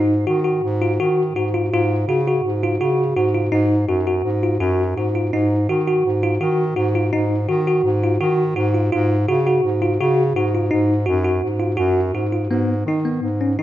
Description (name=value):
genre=contemporary instrumental, chamber music in an uneven meter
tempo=167 BPM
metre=5/4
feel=straight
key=G# dorian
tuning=A4 = 440 Hz
part: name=bell-like tine electric piano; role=arpeggios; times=0.0-13.6 s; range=B3 to F#4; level=-19 LUFS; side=equal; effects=fast stereo tremolo
part: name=warm bass clarinet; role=bass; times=0.0-13.6 s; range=F#2 to D#3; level=-20 LUFS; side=equal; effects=none
room=wet recital hall reverb, RT60 1.6 s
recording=none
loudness=-17 LUFS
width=side -13 dB against mid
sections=0.0-12.5 A section; 12.5-13.6 B section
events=none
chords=0.0 G#5; 1.7 F#5/G#; 3.5 F#sus2; 5.3 G#5; 8.9 F#5/G#; 10.7 F#sus2; 12.5 G#m